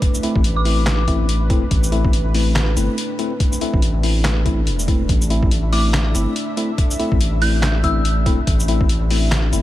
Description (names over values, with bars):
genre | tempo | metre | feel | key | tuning
deep dubstep | 142 BPM | 4/4 | swing 59% on 16ths, half-time | A minor | A4 = 440 Hz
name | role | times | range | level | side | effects
dark analog pad | sustained chords | 0.0-9.6 s | A3 to E5 | -27 LUFS | right 2 dB | chorus
electronic kick drum | drums | 0.0-8.9 s | none | -19 LUFS | equal | none
trip hop sampler-style drum kit | drums | 0.0-9.6 s | handclaps, hi-hat, shaker, snare drum | -24 LUFS | left 1 dB | none
mellow tine electric piano | stabs | 0.2-9.6 s | A3 to E4 | -24 LUFS | left 3 dB | medium stereo tremolo, dub echo
saturated sub bass | bass | 0.4-9.6 s | E1 to A1 | -18 LUFS | equal | none
dark detuned synth bell | melody | 0.6-1.1, 5.7-8.2 s | D6 to G6 | -28 LUFS | left 1 dB | chorus, phaser, dub echo
room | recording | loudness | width
little or no reverb | vinyl crackle | -15 LUFS | side -14 dB against mid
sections
0.0-9.6 A section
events
none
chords
0.0 Am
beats
| 0.02 0.44 0.87 1.29 | 1.71 2.13 2.56 2.98 | 3.40 3.82 4.25 4.67 | 5.09 5.51 5.94 6.36 | 6.78 7.20 7.63 8.05 | 8.47 8.89 9.32